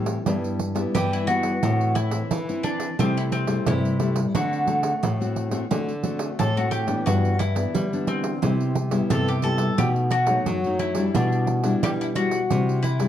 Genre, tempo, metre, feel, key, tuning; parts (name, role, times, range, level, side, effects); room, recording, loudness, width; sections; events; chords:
samba and choro; 88 BPM; 4/4; straight; A4 = 440 Hz
nylon-string guitar; accompaniment; 0.0-13.1 s; F#2 to F#4; -26 LUFS; left 2 dB
nylon-string guitar; bass; 0.0-13.1 s; G2 to G3; -25 LUFS; equal
pandeiro; percussion; 0.1-13.1 s; -28 LUFS; right 5 dB
bowl-back mandolin; melody; 0.9-13.1 s; C4 to A4; -27 LUFS; left 1 dB
moderate studio reverb, RT60 0.9 s; dark, warm production, faint mains hum; -21 LUFS; side -10 dB against mid
0.0-13.1 A section
0.3 Em/G; 1.6 Am; 3.0 C6; 4.3 D7; 7.1 G6; 8.4 Cmaj7; 9.8 B7; 11.2 Em7/B; 12.5 Cadd9